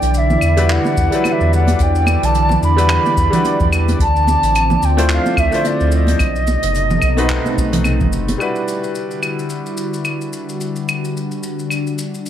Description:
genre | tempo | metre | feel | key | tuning
sunset chillout | 109 BPM | 4/4 | swing 57% on 16ths | E minor from 8.4 s | A4 = 441 Hz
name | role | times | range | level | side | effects
mellow wooden flute | melody | 0.0-8.1 s | D5 to B5 | -19 LUFS | right 2 dB | tape echo
lush unison pad | sustained chords | 0.0-12.3 s | B2 to D5 | -22 LUFS | equal | chorus
warm sub bass | bass | 0.0-8.3 s | F#1 to E2 | -16 LUFS | equal | tube saturation
vintage brush drum kit | drums | 0.0-12.3 s | claves, handclaps, hi-hat, shaker | -24 LUFS | left 1 dB | none
congas | percussion | 0.3-8.4 s | none | -23 LUFS | right 2 dB | none
bright baby grand piano | accompaniment | 0.6-12.3 s | F#3 to C5 | -23 LUFS | left 1 dB | auto-pan, tape echo
electronic kick drum | drums | 1.0-8.1 s | none | -20 LUFS | equal | none
room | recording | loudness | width
light reverb, small room ambience | none | -14 LUFS | side -10 dB against mid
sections
0.0-8.4 A section; 8.4-12.3 B section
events
none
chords
0.0 Em9; 4.0 Dm9; 6.2 B7b9; 8.4 Em9

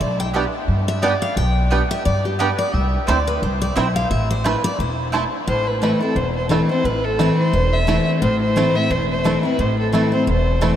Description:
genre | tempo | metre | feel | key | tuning
bluegrass | 175 BPM | 4/4 | swing 56% on 8ths | A minor | A4 = 436 Hz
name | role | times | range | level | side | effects
picked steel-string acoustic guitar | accompaniment | 0.0-10.8 s | E2 to G5 | -21 LUFS | left 2 dB | none
upright bass | bass | 0.0-10.7 s | E1 to G2 | -21 LUFS | equal | none
mandolin | stabs | 0.3-5.2 s | A3 to A5 | -27 LUFS | right 3 dB | none
bluegrass banjo | arpeggios | 0.4-10.7 s | A3 to G4 | -26 LUFS | right 4 dB | none
dark fiddle | melody | 5.5-10.8 s | A4 to E5 | -21 LUFS | equal | none
room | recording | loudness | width
wet huge ambient reverb, RT60 8.7 s | in a vast, echoing space | -16 LUFS | side -10 dB against mid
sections
0.0-5.5 A section; 5.5-10.8 B section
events
steel-string acoustic guitar solo 0.0-5.5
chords
0.0 G/B; 2.7 C; 4.1 Am

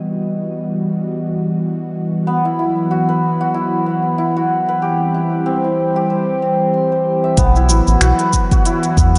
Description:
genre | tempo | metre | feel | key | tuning
organic downtempo | 94 BPM | 4/4 | swing 56% on 16ths | unclear | A4 = 440 Hz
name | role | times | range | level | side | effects
warm analog pad | sustained chords | 0.0-9.2 s | E3 to G4 | -22 LUFS | equal | chorus, sidechain pumping, shimmer reverb
santur | arpeggios | 0.0-9.2 s | B3 to C6 | -20 LUFS | equal | digital delay, shimmer reverb
bronze singing bowl | texture | 0.0-7.4 s | D#5 | -39 LUFS | equal | shimmer reverb
round analog bass | bass | 7.4-9.2 s | A1 to E2 | -15 LUFS | equal | none
afro-pop drum kit | drums | 7.4-9.2 s | finger snaps, hi-hat, shaker | -23 LUFS | equal | none
electronic kick drum | drums | 7.4-9.1 s | none | -17 LUFS | equal | none
room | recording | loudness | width
wet concert hall reverb, RT60 2.3 s | dark, warm production, nothing above 10.4 kHz | -17 LUFS | mono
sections
0.0-7.4 A section; 7.4-9.2 B section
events
filter sweep on analog synth pad 0.0-7.4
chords
0.0 Emadd9; 2.3 Bsus4; 4.8 C; 7.4 Bsus4

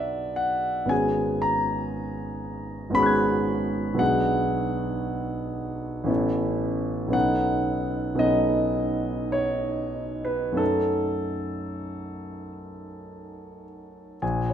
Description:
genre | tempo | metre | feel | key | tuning
classical, impressionist solo piano | 47-59 BPM | 3/4 | rubato | F# dorian | A4 = 440 Hz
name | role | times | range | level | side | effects
clear concert grand piano | solo | 0.0-14.5 s | G#1 to G#6 | -24 LUFS | equal | none
room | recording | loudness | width
wet recital hall reverb, RT60 1.8 s | none | -23 LUFS | side -9 dB against mid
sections
0.0-14.2 A section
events
none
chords
0.0 Bm6; 0.9 G#m11; 4.0 Bm6; 6.1 Aadd9; 7.1 B9; 10.6 F#m6

